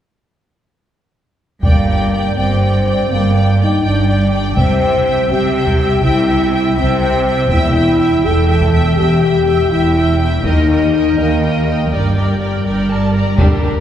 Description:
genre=cinematic, epic orchestral film score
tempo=82 BPM (dotted quarters)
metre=6/8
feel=straight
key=G minor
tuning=A4 = 439 Hz
part: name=warm symphonic violin section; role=melody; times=1.6-13.8 s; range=Bb4 to Bb5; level=-28 LUFS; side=left 1 dB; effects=none
part: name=clear symphonic violin section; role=second line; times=1.6-13.7 s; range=D4 to G5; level=-23 LUFS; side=left 1 dB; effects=none
part: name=bright symphonic viola section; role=accompaniment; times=1.6-13.7 s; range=D3 to E5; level=-24 LUFS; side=right 2 dB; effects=none
part: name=dark French horn section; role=sustained chords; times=1.6-12.6 s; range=G3 to A4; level=-16 LUFS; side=left 2 dB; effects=none
part: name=clear studio cello section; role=bass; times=1.6-13.7 s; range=Eb2 to C3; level=-18 LUFS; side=right 1 dB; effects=none
part: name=rich symphonic double bass section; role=bass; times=1.6-13.7 s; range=E1 to Eb2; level=-18 LUFS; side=right 2 dB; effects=none
part: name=taiko ensemble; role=drums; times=1.6-13.8 s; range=none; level=-17 LUFS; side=equal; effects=none
room=wet scoring stage reverb, RT60 1.6 s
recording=heard from further back in the room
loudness=-12 LUFS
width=side -10 dB against mid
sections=1.6-13.4 A section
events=none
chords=1.6 Gm; 4.6 C; 7.5 Em; 10.4 Eb; 11.9 Gm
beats=| 1.64 2.37 | 3.10 3.84 | 4.57 5.31 | 6.04 6.77 | 7.51 8.24 | 8.98 9.71 | 10.45 11.18 | 11.91 12.65 | 13.38

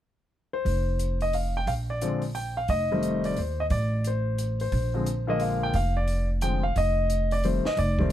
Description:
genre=jazz piano trio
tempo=177 BPM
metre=3/4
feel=swing 63% on 8ths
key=F mixolydian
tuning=A4 = 440 Hz
part: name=warm concert grand piano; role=melody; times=0.5-8.1 s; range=D3 to G5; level=-27 LUFS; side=left 2 dB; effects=plate reverb
part: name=upright bass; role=bass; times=0.7-8.1 s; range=F1 to Eb2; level=-27 LUFS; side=equal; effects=none
part: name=compact cocktail drum kit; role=drums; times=0.7-8.1 s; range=hi-hat, kick drum, snare drum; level=-34 LUFS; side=right 2 dB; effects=none
room=little or no reverb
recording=none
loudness=-24 LUFS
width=side -12 dB against mid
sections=0.7-8.1 A section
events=none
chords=0.0 N.C.; 0.7 F5; 1.7 Bb; 2.7 F9; 4.7 Bb9; 6.8 F9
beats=0.32 | 0.66 1.00 1.34 | 1.68 2.02 2.36 | 2.70 3.04 3.38 | 3.71 4.05 4.39 | 4.73 5.07 5.41 | 5.75 6.09 6.42 | 6.76 7.10 7.44 | 7.78 8.12

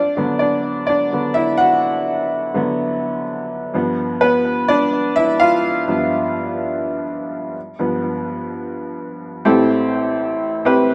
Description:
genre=pop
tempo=126 BPM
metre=4/4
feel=straight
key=unclear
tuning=A4 = 435 Hz
part: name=clear upright piano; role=solo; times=0.0-10.9 s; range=A1 to F#5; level=-19 LUFS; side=equal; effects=digital delay
room=wet small room ambience, RT60 0.5 s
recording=rough home demo mix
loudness=-19 LUFS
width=mono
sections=0.0-7.6 A section; 7.6-9.5 B section; 9.5-10.9 C section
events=upright piano solo 0.0-7.6, 7.6-9.5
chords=0.0 D6; 3.7 G7; 9.5 Am7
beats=0.41 0.89 1.36 | 1.84 2.32 2.79 3.27 | 3.75 4.22 4.70 5.17 | 5.65 6.13 6.60 7.08 | 7.56 8.03 8.51 8.98 | 9.46 9.94 10.41 10.89

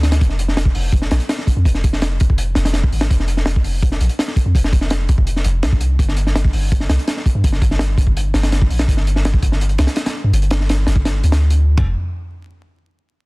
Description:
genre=drum and bass, jungle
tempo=166 BPM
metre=4/4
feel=straight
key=unclear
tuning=A4 = 440 Hz
part: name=long sustained 808-style bass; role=bass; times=0.0-11.9 s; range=F1 to G2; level=-16 LUFS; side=equal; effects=none
part: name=crunchy breakbeat drum kit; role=drums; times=0.0-11.9 s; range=hi-hat, kick drum, ride cymbal, snare drum, toms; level=-17 LUFS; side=equal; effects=none
room=little or no reverb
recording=dense, heavily limited modern master, vinyl crackle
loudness=-14 LUFS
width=side -26 dB against mid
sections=0.2-11.8 A section; 11.8-13.2 B section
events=none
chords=none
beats=| 0.21 0.57 0.93 1.29 | 1.66 2.02 2.38 2.74 | 3.10 3.46 3.82 4.18 | 4.55 4.91 5.27 5.63 | 5.99 6.35 6.71 7.08 | 7.44 7.80 8.16 8.52 | 8.88 9.24 9.61 9.97 | 10.33 10.69 11.05 11.41 | 11.78

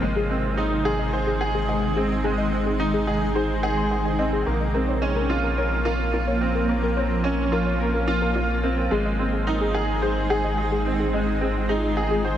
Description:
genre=piano and strings electronica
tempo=108 BPM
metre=4/4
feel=straight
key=unclear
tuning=A4 = 440 Hz
part: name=granular cloud pad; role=sustained chords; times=0.0-12.4 s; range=C3 to F4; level=-28 LUFS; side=equal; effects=built-in reverb, analog chorus
part: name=clear baby grand piano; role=riff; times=0.0-12.4 s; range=Ab3 to C5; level=-25 LUFS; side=right 2 dB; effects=analog chorus, analog delay
part: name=round analog bass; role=bass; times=0.0-12.4 s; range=Ab1 to Bb1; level=-27 LUFS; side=equal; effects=none
part: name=soft round pluck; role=arpeggios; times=0.2-12.2 s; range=Ab4 to C6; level=-29 LUFS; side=left 3 dB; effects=chorus, analog delay
room=wet huge ambient reverb, RT60 7.5 s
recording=dreamy mix soaked in reverb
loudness=-21 LUFS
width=side -10 dB against mid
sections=0.0-12.4 A section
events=none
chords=0.0 Ab; 4.5 Bbmadd9; 8.9 Ab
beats=| 0.02 0.58 1.13 1.69 | 2.24 2.80 3.35 3.91 | 4.46 5.02 5.58 6.13 | 6.69 7.24 7.80 8.35 | 8.91 9.46 10.02 10.58 | 11.13 11.69 12.24

